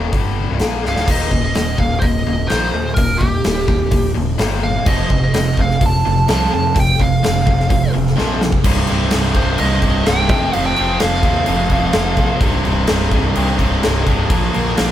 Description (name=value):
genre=classic rock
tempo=127 BPM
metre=4/4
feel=straight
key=unclear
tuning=A4 = 441 Hz
part: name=tight distorted guitar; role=riff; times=0.0-14.9 s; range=C2 to Bb3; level=-22 LUFS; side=left 5 dB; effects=distortion
part: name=growling picked electric bass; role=bass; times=0.0-14.9 s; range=C1 to F2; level=-21 LUFS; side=equal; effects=overdrive
part: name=huge arena drum kit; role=drums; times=0.1-14.9 s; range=crash cymbal, hi-hat, kick drum, snare drum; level=-18 LUFS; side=equal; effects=none
part: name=biting lead guitar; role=melody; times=0.9-12.4 s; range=G4 to A5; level=-20 LUFS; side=right 2 dB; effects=overdrive
part: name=tonewheel organ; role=sustained chords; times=1.1-14.9 s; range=Bb3 to F5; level=-34 LUFS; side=equal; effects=none
part: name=overdriven electric guitar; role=riff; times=4.9-14.9 s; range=C2 to Bb3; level=-20 LUFS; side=right 4 dB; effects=none
room=moderate small room ambience, RT60 0.5 s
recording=band playing live in one room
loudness=-14 LUFS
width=side -11 dB against mid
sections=0.0-1.1 A section; 1.1-8.7 B section; 8.7-14.9 C section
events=drum fill 0.8, 8.2-8.7; lead electric guitar solo 8.7-14.9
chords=0.0 Cm; 1.1 Eb; 4.9 F; 8.7 Cm; 10.3 F; 12.4 Cm; 14.3 Bb